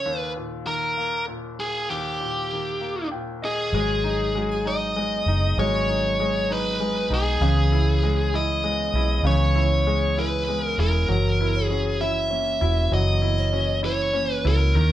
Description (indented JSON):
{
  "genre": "six-eight pop ballad",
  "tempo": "65 BPM (dotted quarters)",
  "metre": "6/8",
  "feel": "straight",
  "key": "G# minor",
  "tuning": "A4 = 440 Hz",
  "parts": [
    { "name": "biting lead guitar", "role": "melody", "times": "0.0-14.9 s", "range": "G4 to E5", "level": "-24 LUFS", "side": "equal", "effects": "overdrive" },
    { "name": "bright concert grand piano", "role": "accompaniment", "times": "0.0-14.9 s", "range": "D#2 to G5", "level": "-28 LUFS", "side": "left 2 dB", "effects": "none" },
    { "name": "picked steel-string acoustic guitar", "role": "arpeggios", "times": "3.7-14.9 s", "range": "E3 to G#4", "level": "-31 LUFS", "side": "right 4 dB", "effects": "none" },
    { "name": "vintage muted fingered electric bass", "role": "bass", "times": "3.7-14.9 s", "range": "E1 to D#2", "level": "-23 LUFS", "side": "equal", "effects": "none" }
  ],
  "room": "moderate studio reverb, RT60 0.6 s",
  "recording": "band playing live in one room",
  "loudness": "-20 LUFS",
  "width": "side -13 dB against mid",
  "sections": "0.0-3.7 A section; 3.7-14.9 B section",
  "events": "grand piano fill 2.8-3.7",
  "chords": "0.1 D#; 3.7 G#m7; 7.4 C#m7; 11.1 F#7"
}